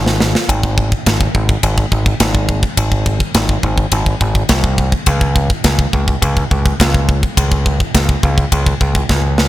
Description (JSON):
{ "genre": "heavy metal", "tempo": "105 BPM", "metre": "4/4", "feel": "straight", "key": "unclear", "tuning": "A4 = 440 Hz", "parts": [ { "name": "growling picked electric bass", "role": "bass", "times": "0.0-9.5 s", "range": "Ab1 to Db2", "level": "-15 LUFS", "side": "equal", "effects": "overdrive" }, { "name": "tight metal drum kit", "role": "drums", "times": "0.1-9.5 s", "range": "kick drum, ride cymbal, snare drum", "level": "-14 LUFS", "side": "equal", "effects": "none" } ], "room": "little or no reverb", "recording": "none", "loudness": "-12 LUFS", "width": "side -15 dB against mid", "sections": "0.0-9.5 A section", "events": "drum fill 0.0-0.5, 9.1-9.5", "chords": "none" }